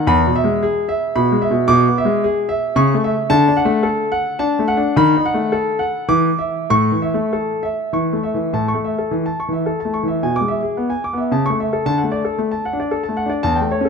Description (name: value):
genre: classical, baroque-style suite movement for grand piano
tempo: 96-114 BPM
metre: 3/4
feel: rubato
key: A major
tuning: A4 = 436 Hz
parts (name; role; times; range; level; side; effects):
- warm concert grand piano; solo; 0.0-13.9 s; E2 to D6; -15 LUFS; equal; none
room: moderate concert hall reverb, RT60 2.3 s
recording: close, detailed microphones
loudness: -15 LUFS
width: side -5 dB against mid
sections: 0.0-8.5 A section; 8.5-13.9 B section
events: none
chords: 0.1 E; 1.7 E7/B; 2.8 A/C#; 3.3 D; 5.0 B7/D#; 6.1 Dsus2/E; 6.7 A; 10.2 E7/B; 11.3 A/C#; 11.8 D